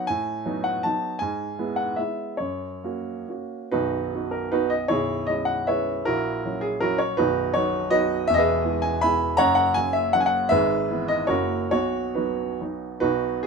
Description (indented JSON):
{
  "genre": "classical, romantic triple-time dance for piano with dotted rhythms",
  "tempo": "128-174 BPM",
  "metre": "3/4",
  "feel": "rubato",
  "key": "B major",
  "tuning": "A4 = 440 Hz",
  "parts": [
    { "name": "warm baby grand piano", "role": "solo", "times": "0.0-13.5 s", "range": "B0 to B5", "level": "-22 LUFS", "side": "right 1 dB", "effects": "none" }
  ],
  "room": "light reverb",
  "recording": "minimal, uncompressed stereo recording",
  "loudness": "-22 LUFS",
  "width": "side -4 dB against mid",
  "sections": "0.0-3.7 A section; 3.7-13.0 B section",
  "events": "none",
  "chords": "0.1 B7/A; 1.2 E/G#; 2.4 F#; 3.7 B; 4.9 C#m7/B; 6.1 F#7/A#; 7.2 B; 8.3 E; 9.4 F#; 10.5 E/G#; 11.3 F#7; 11.7 B",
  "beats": "| 0.07 0.45 0.83 | 1.19 1.57 1.98 | 2.39 2.83 3.28 | 3.71 4.13 4.53 | 4.91 5.29 5.68 | 6.07 6.45 6.83 | 7.19 7.56 7.93 | 8.29 8.65 9.02 | 9.38 9.76 10.14 | 10.51 10.89 11.30 | 11.72 12.16 12.60 | 13.02 13.44"
}